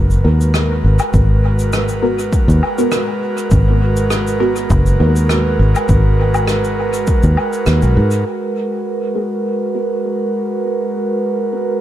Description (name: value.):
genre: ambient dub.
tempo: 101 BPM.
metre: 4/4.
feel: swing 54% on 16ths.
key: G# minor.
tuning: A4 = 440 Hz.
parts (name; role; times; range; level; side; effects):
airy breathy pad; sustained chords; 0.0-11.8 s; G#3 to B4; -19 LUFS; right 1 dB; chorus.
fingered electric bass; bass; 0.0-8.2 s; F#1 to G#2; -13 LUFS; equal; none.
shaker, rim click and woodblock; drums; 0.1-8.2 s; none; -24 LUFS; equal; dub echo.
filtered dub chord stab; stabs; 0.2-5.1, 9.2-11.7 s; B3 to A#4; -23 LUFS; equal; phaser, lush chorus, dub echo.
electronic kick drum; drums; 1.1-7.2 s; none; -16 LUFS; equal; overdrive.
room: small room reverb.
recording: dark, warm production.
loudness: -13 LUFS.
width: side -12 dB against mid.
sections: 0.0-8.3 A section; 8.3-11.8 B section.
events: filter sweep on analog synth pad 8.3-11.8; filter sweep on synth stab 8.3-11.8.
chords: 0.0 G#m9.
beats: 0.54 | 1.14 1.73 2.32 2.92 | 3.51 4.11 4.70 5.29 | 5.89 6.48 7.08 7.67 | 8.26 8.86 9.45 10.05 | 10.64 11.23.